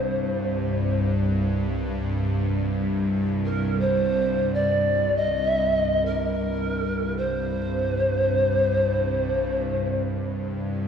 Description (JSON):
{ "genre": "world meditative, free-time meditation music", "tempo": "free time", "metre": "none", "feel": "none", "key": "C minor", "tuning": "A4 = 440 Hz", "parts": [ { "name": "polished pan flute", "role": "melody", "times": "0.0-10.1 s", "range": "Bb4 to Eb5", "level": "-24 LUFS", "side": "equal", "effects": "tape echo" }, { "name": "bowed-like drone", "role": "drone", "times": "0.0-10.9 s", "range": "C2 to G2", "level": "-24 LUFS", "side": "equal", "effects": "built-in reverb" }, { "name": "crotales", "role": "texture", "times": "0.0-2.1 s", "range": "none", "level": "barely audible", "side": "none", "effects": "none" } ], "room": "wet concert hall reverb, RT60 2.5 s", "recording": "dark, warm production", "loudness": "-22 LUFS", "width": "side -7 dB against mid", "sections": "0.0-10.9 A section", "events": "none", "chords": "none" }